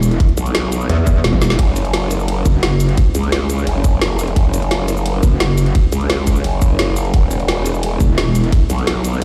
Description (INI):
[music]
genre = dark technical drum and bass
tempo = 173 BPM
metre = 4/4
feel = straight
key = unclear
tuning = A4 = 440 Hz
[part]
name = metallic wobble bass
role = bass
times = 0.0-3.0, 5.2-5.7, 8.0-8.5 s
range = E1 to E2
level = -17 LUFS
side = equal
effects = distortion, chorus, tube saturation
[part]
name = drum and bass drum kit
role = drums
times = 0.0-9.2 s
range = cabasa, hi-hat, ride cymbal, snare drum, toms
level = -24 LUFS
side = equal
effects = none
[part]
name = electronic kick drum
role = drums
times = 0.2-8.6 s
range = none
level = -16 LUFS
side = equal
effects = none
[part]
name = growl bass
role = bass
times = 0.4-9.2 s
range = E1 to C#2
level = -20 LUFS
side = equal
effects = chorus, overdrive
[sound]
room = little or no reverb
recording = played on a big sound system in a bare room, stone room reverb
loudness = -16 LUFS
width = mono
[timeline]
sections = 0.0-9.2 A section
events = drum fill 1.3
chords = 0.0 E5; 1.6 F#5; 7.1 E5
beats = | 0.20 0.55 0.90 1.24 | 1.59 1.94 2.28 2.63 | 2.98 3.32 3.67 4.02 | 4.36 4.71 5.06 5.40 | 5.75 6.10 6.44 6.79 | 7.14 7.48 7.83 8.18 | 8.53 8.87 9.22